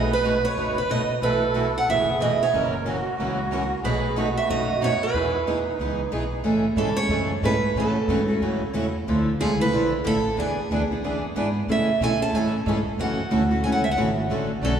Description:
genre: acoustic string swing (jazz manouche)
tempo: 184 BPM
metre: 4/4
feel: swing 59% on 8ths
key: E major, A major from 6.5 s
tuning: A4 = 438 Hz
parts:
  - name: picked steel-string acoustic guitar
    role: melody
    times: 0.0-14.8 s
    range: G#4 to A5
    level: -25 LUFS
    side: right 3 dB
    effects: none
  - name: musette accordion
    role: second line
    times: 0.0-6.3 s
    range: D#4 to B4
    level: -30 LUFS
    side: right 2 dB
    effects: none
  - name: picked steel-string acoustic guitar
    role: accompaniment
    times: 0.0-14.7 s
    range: B2 to G#4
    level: -26 LUFS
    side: left 1 dB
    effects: none
  - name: picked swing-style acoustic guitar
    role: accompaniment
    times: 0.0-14.7 s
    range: B2 to B4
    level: -30 LUFS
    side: right 4 dB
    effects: none
  - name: upright bass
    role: bass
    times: 0.0-14.8 s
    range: F#1 to B2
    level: -27 LUFS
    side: right 1 dB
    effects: none
room: wet concert hall reverb, RT60 2.0 s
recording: recorded in a church or concert hall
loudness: -21 LUFS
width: side -8 dB against mid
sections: 0.0-6.5 A section; 6.5-14.8 B section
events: none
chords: 0.0 B7; 1.2 B7sus4; 2.5 F#7; 3.8 B7; 5.1 Emaj7; 6.5 Amaj7; 7.8 F#m7; 9.1 Dmadd9; 10.4 E7; 11.7 Amaj7; 13.0 F#m7; 14.3 Dmaj7

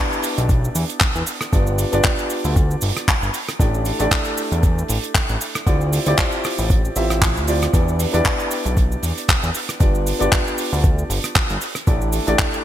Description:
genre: nu-disco, nu disco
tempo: 116 BPM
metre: 4/4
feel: swing 55% on 16ths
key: unclear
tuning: A4 = 440 Hz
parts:
  - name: warm concert grand piano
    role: accompaniment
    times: 0.0-12.6 s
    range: A3 to E5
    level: -24 LUFS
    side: equal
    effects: sidechain pumping, ping-pong delay
  - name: damped 70s drum kit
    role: drums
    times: 0.1-12.6 s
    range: cabasa, handclaps, hi-hat, rim click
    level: -22 LUFS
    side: equal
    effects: gated reverb
  - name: fat analog bass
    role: bass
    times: 0.4-12.4 s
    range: G1 to E2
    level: -21 LUFS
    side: equal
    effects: none
  - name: electronic kick drum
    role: drums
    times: 0.5-12.5 s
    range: none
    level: -18 LUFS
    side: equal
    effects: overdrive
room: light reverb, small room ambience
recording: bright 1980s-style digital production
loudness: -17 LUFS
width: side -12 dB against mid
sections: 0.0-12.6 A section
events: none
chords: 0.0 Em7; 1.5 G7; 3.3 A7sus4; 5.7 Dm11; 7.7 Em7; 9.8 G7; 11.6 A7sus4

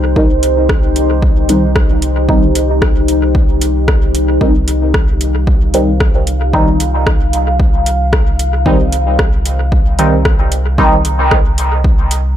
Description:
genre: dub techno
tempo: 113 BPM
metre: 4/4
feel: straight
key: C minor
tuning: A4 = 440 Hz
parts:
  - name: deep dark ambient pad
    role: sustained chords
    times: 0.0-12.4 s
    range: Eb4 to F5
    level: -18 LUFS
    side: left 1 dB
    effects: chorus, built-in reverb, sidechain pumping
  - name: soft dub sub bass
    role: bass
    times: 0.0-12.4 s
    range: C2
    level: -16 LUFS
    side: equal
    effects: sidechain pumping
  - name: resonant sweep polysynth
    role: stabs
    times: 0.2-10.9 s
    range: Eb3 to Eb4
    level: -16 LUFS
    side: equal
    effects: chorus, phaser, dub echo
  - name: electronic kick drum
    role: drums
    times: 0.2-12.0 s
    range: none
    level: -13 LUFS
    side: equal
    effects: overdrive
  - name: deep house drum kit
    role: drums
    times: 0.4-12.2 s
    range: hi-hat, rim click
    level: -20 LUFS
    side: equal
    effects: overdrive, dub echo
room: little or no reverb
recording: echo-heavy mix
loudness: -10 LUFS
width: side -10 dB against mid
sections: 0.0-12.4 A section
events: filter sweep on analog polysynth 0.0-12.4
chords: 0.0 Cm

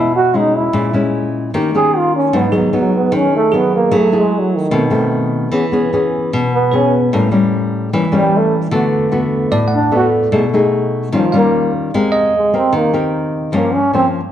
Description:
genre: bossa nova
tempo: 150 BPM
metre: 4/4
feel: straight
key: E major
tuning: A4 = 441 Hz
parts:
  - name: warm trombone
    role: melody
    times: 0.0-14.1 s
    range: D#3 to G#4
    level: -15 LUFS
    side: right 2 dB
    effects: none
  - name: bell-like tine electric piano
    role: accompaniment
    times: 0.0-4.1, 6.7-13.5 s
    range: G#4 to F#5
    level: -21 LUFS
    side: right 3 dB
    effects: none
  - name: nylon-string guitar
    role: accompaniment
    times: 0.0-14.3 s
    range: G2 to Bb4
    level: -14 LUFS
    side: left 1 dB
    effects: none
room: moderate large studio reverb, RT60 1.3 s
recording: dark, warm production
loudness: -12 LUFS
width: side -10 dB against mid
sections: 0.0-11.9 A section; 11.9-14.3 A section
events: trombone solo 0.0-11.9, 11.9-14.3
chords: 0.0 E69; 0.7 A#m7b5; 1.5 D#7; 2.3 G#m7; 3.9 F#m9; 4.7 B7b9; 5.5 E6; 7.1 A7b9; 8.7 D6; 10.3 B6; 11.1 D#9; 11.9 Abmaj9; 13.5 Gm7b5

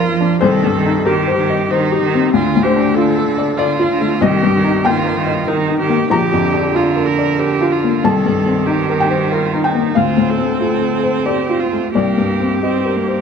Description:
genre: neoclassical piano and strings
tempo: 94 BPM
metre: 3/4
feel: rubato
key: C dorian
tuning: A4 = 436 Hz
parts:
  - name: rich cello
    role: second line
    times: 0.0-13.2 s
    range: D3 to C4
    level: -20 LUFS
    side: right 6 dB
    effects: none
  - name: clear viola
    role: accompaniment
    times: 0.0-13.2 s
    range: Eb4 to Bb4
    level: -20 LUFS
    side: right 3 dB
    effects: none
  - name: felt-muted upright piano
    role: accompaniment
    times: 0.0-13.2 s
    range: Bb1 to Bb5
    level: -15 LUFS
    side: left 4 dB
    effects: none
room: moderate recital hall reverb, RT60 1.7 s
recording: dark, warm production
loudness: -13 LUFS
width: side -6 dB against mid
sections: 0.0-13.2 A section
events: none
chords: 0.4 Cm7; 2.3 Dm7; 4.2 Cm7; 6.1 Bb; 8.0 Cm7; 9.9 Dm7; 11.9 Cm7

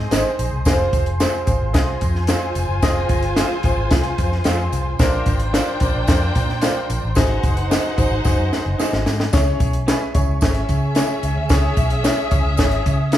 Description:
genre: uptempo 1960s-style soul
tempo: 111 BPM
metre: 4/4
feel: straight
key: unclear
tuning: A4 = 442 Hz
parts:
  - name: warm studio string section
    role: second line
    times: 0.0-13.2 s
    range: C4 to Ab5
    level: -26 LUFS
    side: equal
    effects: none
  - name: large flute ensemble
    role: sustained chords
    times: 0.0-13.2 s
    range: C5 to D#6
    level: -30 LUFS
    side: equal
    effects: none
  - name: vintage muted fingered electric bass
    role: bass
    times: 0.0-13.2 s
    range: F1 to C#3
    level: -22 LUFS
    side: equal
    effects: none
  - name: clear upright piano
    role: accompaniment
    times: 0.1-13.2 s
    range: C4 to E5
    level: -25 LUFS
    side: left 1 dB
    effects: none
  - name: electric guitar through a small old amp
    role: stabs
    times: 0.1-13.2 s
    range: C#4 to C5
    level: -28 LUFS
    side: right 3 dB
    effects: vibrato effect
  - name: compact cocktail drum kit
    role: drums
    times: 0.1-13.2 s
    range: hi-hat, kick drum, snare drum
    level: -19 LUFS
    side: equal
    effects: none
  - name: tambourine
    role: percussion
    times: 0.1-13.2 s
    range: none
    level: -38 LUFS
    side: right 6 dB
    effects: none
room: moderate large studio reverb, RT60 1.2 s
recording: band playing live in one room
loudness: -16 LUFS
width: side -12 dB against mid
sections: 0.0-9.3 A section; 9.3-13.2 A section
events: drum fill 8.2-9.3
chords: 0.0 Ab; 0.7 Fm; 5.0 Bbadd9; 7.2 Ab7; 9.3 C#m

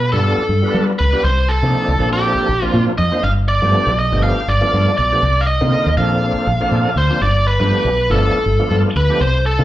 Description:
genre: electric jazz fusion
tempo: 121 BPM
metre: 4/4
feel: swing 55% on 16ths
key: unclear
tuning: A4 = 436 Hz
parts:
  - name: biting lead guitar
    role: melody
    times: 0.0-9.6 s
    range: G4 to F5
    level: -18 LUFS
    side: equal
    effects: overdrive, slapback echo, plate reverb
  - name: fingered electric bass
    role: bass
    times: 0.0-9.6 s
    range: G1 to G3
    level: -16 LUFS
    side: equal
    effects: none
  - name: overdriven tonewheel organ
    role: accompaniment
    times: 0.1-9.6 s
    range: D3 to C5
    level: -21 LUFS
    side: equal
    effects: slow rotary speaker, chorus vibrato, plate reverb, slapback echo
room: light reverb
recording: live gig heard through the venue's PA, club reverb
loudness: -13 LUFS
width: side -14 dB against mid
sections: 0.0-9.6 A section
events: none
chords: 0.0 G9; 1.2 Cm11; 2.0 Bbmaj9; 3.2 G9; 5.2 Cm11; 6.0 Bbmaj9; 7.2 G9

